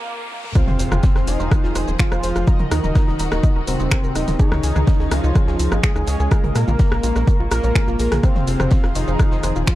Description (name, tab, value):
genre	melodic techno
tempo	125 BPM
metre	4/4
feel	straight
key	F phrygian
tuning	A4 = 440 Hz
part	wide unison lead	melody	0.0-9.8 s	Bb3 to Bb4	-27 LUFS	equal	digital delay
part	riser and impact	sound effects	0.0-2.5 s	none	-28 LUFS	equal	none
part	punchy analog drum machine	drums	0.3-9.8 s	finger snaps, hi-hat, rim click, shaker, toms	-25 LUFS	left 1 dB	overdrive
part	soft supersaw	second line	0.6-9.8 s	C3 to Bb3	-29 LUFS	right 1 dB	sidechain pumping, digital delay
part	rich studio string section	sustained chords	0.6-9.8 s	Eb3 to Ab4	-32 LUFS	equal	sidechain pumping
part	analog pluck	arpeggios	0.6-9.8 s	Eb4 to Db6	-31 LUFS	right 2 dB	chorus, cassette tape, sidechain pumping, digital delay
part	analog synth brass	stabs	0.6-9.4 s	Bb3 to F5	-31 LUFS	left 3 dB	chorus, cassette tape, sidechain pumping, digital delay
part	damped 70s drum kit	drums	0.6-9.8 s	hi-hat, snare drum	-43 LUFS	left 2 dB	none
part	electronic kick drum	drums	0.6-9.8 s	none	-16 LUFS	equal	overdrive
part	warbly tape-like pad	texture	1.3-9.8 s	Db4 to Db6	-33 LUFS	right 1 dB	none
part	tight sequencer bass	bass	0.7-9.6 s	Eb1 to Bb2	-21 LUFS	equal	sidechain pumping, high-pass filter
room	little or no reverb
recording	dark, warm production, high-pass filter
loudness	-16 LUFS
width	side -15 dB against mid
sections	0.6-9.8 A section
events	break 0.0-0.6; riser 0.0-0.6; drum fill 0.3; drop 0.6-9.8; impact 0.6-2.5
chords	0.0 N.C.; 0.6 Fm; 2.5 Ebm; 4.4 Dbadd9; 6.3 Bbm7; 8.2 Fm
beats	0.07 | 0.55 1.03 1.51 1.99 | 2.47 2.95 3.43 3.91 | 4.39 4.87 5.35 5.83 | 6.31 6.79 7.27 7.75 | 8.23 8.71 9.19 9.67